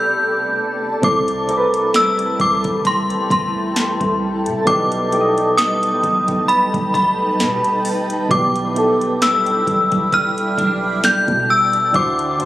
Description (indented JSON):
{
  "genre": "contemporary R&B",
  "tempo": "66 BPM",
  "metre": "4/4",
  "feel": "swing 54% on 16ths",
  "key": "unclear",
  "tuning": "A4 = 440 Hz",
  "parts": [
    { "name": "synth chime", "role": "melody", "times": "0.0-12.5 s", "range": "B5 to G6", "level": "-17 LUFS", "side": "left 1 dB", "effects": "ensemble chorus, tape echo" },
    { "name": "soft electric-piano-like synth keys", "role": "accompaniment", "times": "0.0-12.5 s", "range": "B2 to D#5", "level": "-22 LUFS", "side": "right 1 dB", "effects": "chorus, tremolo" },
    { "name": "granular cloud pad", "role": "sustained chords", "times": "0.0-12.5 s", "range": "C3 to C6", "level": "-25 LUFS", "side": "equal", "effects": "built-in reverb, sidechain pumping" },
    { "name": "clean electric guitar", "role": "arpeggios", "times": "1.0-12.5 s", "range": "B2 to E4", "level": "-26 LUFS", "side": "equal", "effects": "ensemble chorus, tape echo" },
    { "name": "clean 808-style bass", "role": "bass", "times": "1.0-12.5 s", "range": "B1 to C3", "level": "-27 LUFS", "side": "right 1 dB", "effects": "none" },
    { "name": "smooth R&B drum kit", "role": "drums", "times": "1.0-12.5 s", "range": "hi-hat, kick drum, snare drum", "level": "-23 LUFS", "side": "right 1 dB", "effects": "none" }
  ],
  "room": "light reverb, digital ambience",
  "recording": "recorded on a phone in the room, club reverb, compression",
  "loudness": "-15 LUFS",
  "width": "side -15 dB against mid",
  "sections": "0.0-12.5 A section",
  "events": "none",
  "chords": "0.0 Am11/C; 1.0 C6; 4.7 B7alt; 11.9 D7",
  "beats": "0.13 | 1.04 1.95 2.85 3.76 | 4.67 5.58 6.49 7.40 | 8.31 9.22 10.13 11.04 | 11.95"
}